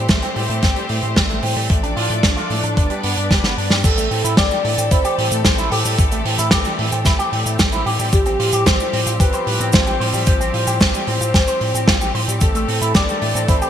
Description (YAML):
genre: italo disco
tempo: 112 BPM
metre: 4/4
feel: straight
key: A minor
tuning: A4 = 440 Hz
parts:
  - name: bright symphonic string section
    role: sustained chords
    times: 0.0-13.7 s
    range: E3 to D5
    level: -25 LUFS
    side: left 1 dB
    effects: none
  - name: electric guitar with an envelope filter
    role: arpeggios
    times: 0.0-13.7 s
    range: G3 to C5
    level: -24 LUFS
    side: right 1 dB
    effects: digital delay
  - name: round analog bass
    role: bass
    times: 0.0-13.6 s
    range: G1 to A2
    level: -23 LUFS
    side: equal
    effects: none
  - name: electronic kick drum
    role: drums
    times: 0.1-13.6 s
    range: none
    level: -17 LUFS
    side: equal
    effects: none
  - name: loose indie drum kit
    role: drums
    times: 0.1-13.7 s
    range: cabasa, crash cymbal, hi-hat, snare drum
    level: -20 LUFS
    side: right 1 dB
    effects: gated reverb
  - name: soft octave-layered synth lead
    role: melody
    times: 3.8-13.7 s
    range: G4 to D5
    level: -23 LUFS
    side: equal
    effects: chorus, phaser, cassette tape, digital delay
room: moderate plate reverb, RT60 2.3 s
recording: bright 1980s-style digital production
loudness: -15 LUFS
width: side -9 dB against mid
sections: 0.0-3.8 A section; 3.8-13.7 B section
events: drum fill 3.3-3.8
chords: 0.0 C6/A; 1.7 Dm/A; 2.8 G; 3.8 Am7; 8.1 Fsus2/A; 12.4 Am7